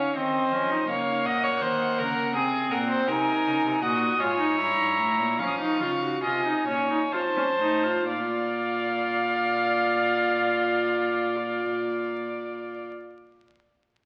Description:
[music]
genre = classical, baroque-style fugue for string quartet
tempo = 60-82 BPM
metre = 3/4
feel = straight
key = unclear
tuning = A4 = 444 Hz
[part]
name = warm violin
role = melody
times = 0.0-12.9 s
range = D#5 to Eb6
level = -32 LUFS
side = equal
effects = none
[part]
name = rich violin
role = second line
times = 0.0-12.9 s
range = G#4 to F5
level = -30 LUFS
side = equal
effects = none
[part]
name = warm viola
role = accompaniment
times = 0.0-12.9 s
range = A#3 to Gb4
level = -30 LUFS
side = equal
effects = none
[part]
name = rich cello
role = bass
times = 0.0-12.9 s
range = F2 to E#3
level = -37 LUFS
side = equal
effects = none
[sound]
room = wet recital hall reverb, RT60 1.4 s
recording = very old 78 rpm record, vinyl crackle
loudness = -25 LUFS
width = mono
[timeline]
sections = 0.0-8.1 A section; 8.1-14.0 B section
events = slowing down 2.0-8.1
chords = 0.2 C#maj9/D#; 0.9 A#m; 2.3 G#/B#; 3.1 Cm7b5; 4.6 Edim7/G; 5.4 Bbm; 7.1 F7; 8.1 Bb

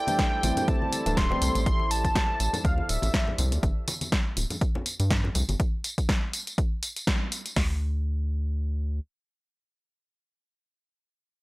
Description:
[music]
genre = deep house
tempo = 122 BPM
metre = 4/4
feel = swing 56% on 16ths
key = unclear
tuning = A4 = 440 Hz
[part]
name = warm velvety synth lead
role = melody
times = 0.0-3.4 s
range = E5 to C6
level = -30 LUFS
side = equal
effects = chorus, tape echo
[part]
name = warm analog pad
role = sustained chords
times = 0.0-3.6 s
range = E4 to D5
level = -37 LUFS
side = right 1 dB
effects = chorus, sidechain pumping
[part]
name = percussive organ stab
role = stabs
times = 0.1-1.6 s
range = E3 to D4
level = -31 LUFS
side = equal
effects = chorus
[part]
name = punchy analog drum machine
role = drums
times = 0.1-7.5 s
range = hi-hat, snare drum, tambourine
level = -30 LUFS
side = equal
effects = overdrive
[part]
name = congas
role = percussion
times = 0.1-5.6 s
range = none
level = -36 LUFS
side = left 1 dB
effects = none
[part]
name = punchy analog drum machine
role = drums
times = 0.2-7.7 s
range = hi-hat, kick drum, snare drum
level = -26 LUFS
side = equal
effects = overdrive
[part]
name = rubbery square bass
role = bass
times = 0.4-9.0 s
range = D1 to G2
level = -27 LUFS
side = equal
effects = transformer saturation, sidechain pumping
[sound]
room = little or no reverb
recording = dry, gritty hardware recording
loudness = -24 LUFS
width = side -22 dB against mid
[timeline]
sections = 0.0-7.6 A section; 7.6-11.4 B section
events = drop 0.0-7.6; band accent 7.1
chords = 0.0 D9sus4; 3.6 G5; 5.4 C5; 7.6 N.C.

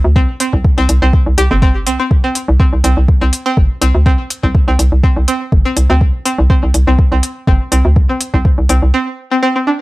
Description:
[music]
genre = minimal techno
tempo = 123 BPM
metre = 4/4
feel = swing 54% on 16ths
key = unclear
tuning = A4 = 435 Hz
[part]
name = hollow knocking FM bass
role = bass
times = 0.0-8.9 s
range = G1 to D2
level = -12 LUFS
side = equal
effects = sidechain pumping
[part]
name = string-like resonator pluck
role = riff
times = 0.2-9.7 s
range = C4 to G4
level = -17 LUFS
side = equal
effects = chorus, sidechain pumping, tape echo
[part]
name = electronic kick drum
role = drums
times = 0.2-8.6 s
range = none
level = -11 LUFS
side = equal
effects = none
[part]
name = electronic hi-hat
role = drums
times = 0.4-8.8 s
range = none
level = -18 LUFS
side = equal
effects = none
[sound]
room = little or no reverb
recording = dry, gritty hardware recording, transformer saturation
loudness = -10 LUFS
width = side -20 dB against mid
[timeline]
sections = 0.0-9.8 A section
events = break 8.9-9.8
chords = 0.0 C5

